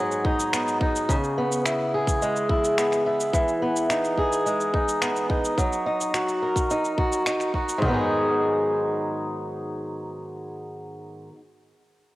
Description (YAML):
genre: folktronica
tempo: 107 BPM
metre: 4/4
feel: straight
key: G# minor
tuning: A4 = 440 Hz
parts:
  - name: fingerpicked swing-style acoustic guitar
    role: arpeggios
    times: 0.0-11.4 s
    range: G#2 to A#4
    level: -23 LUFS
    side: equal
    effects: cassette tape, tape echo
  - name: electronic cabasa and finger snaps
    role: drums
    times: 0.1-7.8 s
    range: none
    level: -31 LUFS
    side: equal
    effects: none
  - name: organic electronic drum kit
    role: drums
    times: 0.2-8.0 s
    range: kick drum, toms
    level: -26 LUFS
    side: equal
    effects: none
room: moderate lush hall reverb, RT60 2.5 s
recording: home recording on cassette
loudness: -22 LUFS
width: side -17 dB against mid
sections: 0.0-7.8 A section; 7.8-10.1 B section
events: none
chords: 0.0 G#m7; 1.1 C#m7; 3.3 Emaj7; 5.6 D#m/F#; 7.8 G#m7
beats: 0.53 | 1.09 1.65 2.21 2.77 | 3.34 3.90 4.46 5.02 | 5.58 6.14 6.70 7.26 | 7.82 8.38 8.94 9.50